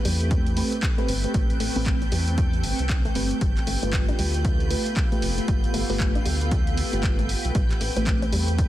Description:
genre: deep house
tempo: 116 BPM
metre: 4/4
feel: swing 61% on 16ths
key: A minor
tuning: A4 = 440 Hz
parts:
  - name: soft string machine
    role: sustained chords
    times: 0.0-8.7 s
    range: A3 to B4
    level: -33 LUFS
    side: equal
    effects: phaser, ensemble chorus, vintage 12-bit sampler grit, sidechain pumping
  - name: mellow FM electric piano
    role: stabs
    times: 0.0-8.7 s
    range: A3 to B4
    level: -30 LUFS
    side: equal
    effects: chorus, phaser, sidechain pumping, tape echo
  - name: punchy analog drum machine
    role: drums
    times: 0.0-8.7 s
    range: handclaps, hi-hat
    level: -32 LUFS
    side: equal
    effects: none
  - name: granular cloud pad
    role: texture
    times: 0.0-8.7 s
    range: B3 to B5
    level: -35 LUFS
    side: right 1 dB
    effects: built-in reverb, sidechain pumping
  - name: rich chamber violin section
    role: texture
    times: 0.0-8.7 s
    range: G6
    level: -38 LUFS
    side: right 2 dB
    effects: sidechain pumping
  - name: analog pluck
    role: arpeggios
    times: 0.1-8.4 s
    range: G3 to D4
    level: -34 LUFS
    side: left 3 dB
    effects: chorus, sidechain pumping, tape echo
  - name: round analog bass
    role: bass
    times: 0.1-8.7 s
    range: F1 to E2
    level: -26 LUFS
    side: equal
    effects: tube saturation, sidechain pumping
  - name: electronic kick drum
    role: drums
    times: 0.3-8.7 s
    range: none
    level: -24 LUFS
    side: equal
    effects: none
room: digital ambience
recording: dense, heavily limited modern master, vinyl crackle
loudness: -21 LUFS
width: side -14 dB against mid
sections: 0.0-8.7 A section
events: filter sweep on synth arpeggio sound 0.0-8.7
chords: 0.0 Am9; 3.4 G9; 7.5 Am9

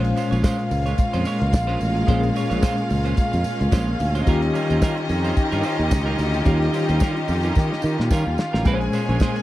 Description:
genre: disco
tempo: 110 BPM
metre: 4/4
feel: swing 56% on 16ths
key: Bb dorian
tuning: A4 = 442 Hz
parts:
  - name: clear studio violin section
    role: second line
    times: 0.0-9.4 s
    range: Eb4 to Ab5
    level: -27 LUFS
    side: left 1 dB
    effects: none
  - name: mellow reed electric piano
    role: accompaniment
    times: 0.0-9.4 s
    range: Bb2 to C5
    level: -26 LUFS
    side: left 3 dB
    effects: fast tremolo
  - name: semi-hollow electric guitar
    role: accompaniment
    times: 0.0-9.4 s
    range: G3 to Db5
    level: -30 LUFS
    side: right 6 dB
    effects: spring reverb
  - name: clear studio string section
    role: sustained chords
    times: 0.0-9.4 s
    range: Eb3 to G4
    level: -27 LUFS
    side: right 1 dB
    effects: none
  - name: fingered electric bass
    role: bass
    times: 0.0-9.2 s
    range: A1 to Eb3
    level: -22 LUFS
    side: equal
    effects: none
  - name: damped 70s drum kit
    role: drums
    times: 0.0-9.4 s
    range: hi-hat, kick drum, snare drum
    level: -20 LUFS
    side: equal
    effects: none
  - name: tambourine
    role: percussion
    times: 0.2-9.3 s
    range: none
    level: -43 LUFS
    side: right 9 dB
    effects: none
room: little or no reverb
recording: dry, close 1970s-style studio recording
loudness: -18 LUFS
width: side -15 dB against mid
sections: 0.0-9.4 A section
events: drum fill 7.6-8.7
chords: 0.0 Bbm9; 4.3 Eb9; 8.7 Bbm9

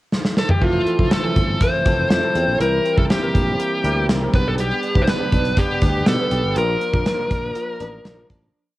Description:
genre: 1980s-style pop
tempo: 121 BPM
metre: 4/4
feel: straight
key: F major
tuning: A4 = 445 Hz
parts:
  - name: gated 80s drum kit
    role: drums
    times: 0.1-8.4 s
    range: hi-hat, kick drum, snare drum, toms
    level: -19 LUFS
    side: equal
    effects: cassette tape
  - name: dark smooth lead guitar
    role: melody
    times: 0.4-8.3 s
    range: F4 to C5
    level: -21 LUFS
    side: left 1 dB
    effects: overdrive
  - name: warm concert grand piano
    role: accompaniment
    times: 0.6-8.6 s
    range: E3 to B4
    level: -27 LUFS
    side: left 2 dB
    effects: none
  - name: twelve-string electric guitar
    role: riff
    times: 0.6-8.8 s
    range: E3 to G4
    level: -27 LUFS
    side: right 3 dB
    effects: ensemble chorus
  - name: sustaining fretless electric bass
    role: bass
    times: 0.6-8.5 s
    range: F1 to B2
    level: -23 LUFS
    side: equal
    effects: none
room: light reverb, small room ambience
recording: home recording on cassette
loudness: -16 LUFS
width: side -17 dB against mid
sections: 0.0-0.6 pickup bar; 0.6-8.5 verse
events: drum fill 0.1-0.6; fade-out 6.6-8.5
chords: 0.0 N.C.; 0.6 Fmaj7; 2.6 C7; 4.3 G/B; 6.6 Bb

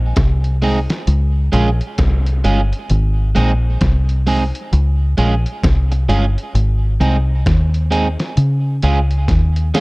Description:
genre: roots reggae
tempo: 66 BPM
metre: 4/4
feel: swing 62% on 16ths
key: Ab major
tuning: A4 = 441 Hz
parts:
  - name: deep dub fingered electric bass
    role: bass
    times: 0.0-9.7 s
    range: G1 to Db3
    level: -14 LUFS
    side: equal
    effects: none
  - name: lo-fi sampler-style drum kit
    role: drums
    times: 0.2-9.8 s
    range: hi-hat, kick drum, snare drum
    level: -19 LUFS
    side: equal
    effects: none
  - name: electric guitar at the edge of break-up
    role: accompaniment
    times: 0.6-9.8 s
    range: Ab3 to Ab4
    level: -21 LUFS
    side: right 2 dB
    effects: tape echo
room: digital ambience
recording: dark, warm production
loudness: -14 LUFS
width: side -24 dB against mid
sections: 0.0-9.8 A section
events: drum fill 9.3-9.8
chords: 0.0 Ab; 1.1 Db; 2.9 Ab; 4.7 Db; 6.5 Ab; 8.4 Db

